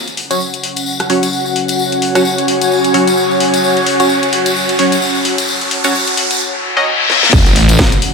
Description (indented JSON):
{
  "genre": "bass house",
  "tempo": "130 BPM",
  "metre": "4/4",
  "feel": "swing 58% on 16ths",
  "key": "F# minor",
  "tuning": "A4 = 440 Hz",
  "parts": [
    { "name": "dark analog pad", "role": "sustained chords", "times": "0.3-8.1 s", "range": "C#4 to F#5", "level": "-19 LUFS", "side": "left 2 dB", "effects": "chorus, sidechain pumping" },
    { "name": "riser, reverse cymbal and impact", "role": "sound effects", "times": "1.0-8.1 s", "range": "none", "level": "-17 LUFS", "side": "left 1 dB", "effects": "none" },
    { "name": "granular cloud pad", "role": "texture", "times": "1.4-6.4 s", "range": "F#4 to A5", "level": "-18 LUFS", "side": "equal", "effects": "built-in reverb, sidechain pumping" },
    { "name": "house drum kit", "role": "drums", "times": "0.1-8.1 s", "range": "crash cymbal, hi-hat, rim click, snare drum", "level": "-18 LUFS", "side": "left 2 dB", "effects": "none" },
    { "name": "tambourine", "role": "percussion", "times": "0.1-8.0 s", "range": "none", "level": "-21 LUFS", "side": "left 5 dB", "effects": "none" },
    { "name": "band-passed chord stab", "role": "stabs", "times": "0.3-6.9 s", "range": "F#3 to D#5", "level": "-18 LUFS", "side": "right 1 dB", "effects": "phaser, sidechain pumping, ping-pong delay" },
    { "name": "phased detuned saw bass", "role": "bass", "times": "7.3-7.9 s", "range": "F#1 to A1", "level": "-12 LUFS", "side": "equal", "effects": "phaser, overdrive, sidechain pumping" },
    { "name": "electronic kick drum", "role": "drums", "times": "7.3-7.9 s", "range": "none", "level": "-12 LUFS", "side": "equal", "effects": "overdrive" }
  ],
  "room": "moderate lush hall reverb, RT60 1.9 s, digital ambience",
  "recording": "high-pass filter",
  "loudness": "-10 LUFS",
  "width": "side -4 dB against mid",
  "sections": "0.0-7.3 A section",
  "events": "build-up 0.0-7.3; filter sweep on synth stab 0.0-7.3; riser 1.0-6.4; reverse cymbal 6.4-7.3; drum fill 7.1; impact 7.3-8.1",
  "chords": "0.0 F#5",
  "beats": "0.41 0.87 1.33 | 1.79 2.25 2.71 3.17 | 3.64 4.10 4.56 5.02 | 5.48 5.94 6.41 6.87 | 7.33 7.79"
}